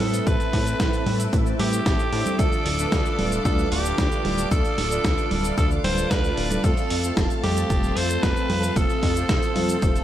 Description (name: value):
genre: italo disco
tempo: 113 BPM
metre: 4/4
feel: straight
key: unclear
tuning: A4 = 440 Hz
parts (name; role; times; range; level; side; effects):
- raspy alto saxophone; melody; 0.0-10.0 s; G4 to C5; -28 LUFS; right 1 dB; ping-pong delay
- string machine, full ensemble; sustained chords; 0.0-10.0 s; C4 to D6; -30 LUFS; equal; ensemble chorus
- analog synth brass; stabs; 0.0-10.0 s; A2 to C5; -30 LUFS; right 2 dB; chorus, vintage 12-bit sampler grit
- chorused synth bass; bass; 0.0-10.0 s; D1 to A2; -26 LUFS; left 1 dB; none
- dusty soul sampler-style drum kit; drums; 0.0-10.0 s; cabasa, congas, hi-hat, snare drum; -27 LUFS; right 1 dB; studio reverb
- electronic kick drum; drums; 0.3-9.9 s; none; -24 LUFS; equal; studio reverb
room: little or no reverb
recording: none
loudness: -20 LUFS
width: side -11 dB against mid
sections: 0.0-10.0 A section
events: none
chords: 0.0 Am; 2.4 Dm; 6.6 F